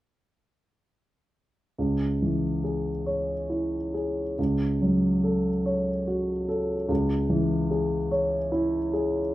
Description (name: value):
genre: classical, romantic nocturne for solo piano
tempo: 45-50 BPM (dotted quarters)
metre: 12/8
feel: rubato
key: C# minor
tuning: A4 = 440 Hz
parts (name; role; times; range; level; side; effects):
- warm grand piano; solo; 1.8-9.3 s; C#2 to C#5; -24 LUFS; equal; none
room: moderate large studio reverb, RT60 1.1 s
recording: minimal, uncompressed stereo recording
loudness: -24 LUFS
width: side -16 dB against mid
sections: 1.8-9.3 A section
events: none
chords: 1.8 C#m; 4.4 F#m/C#; 6.9 C#m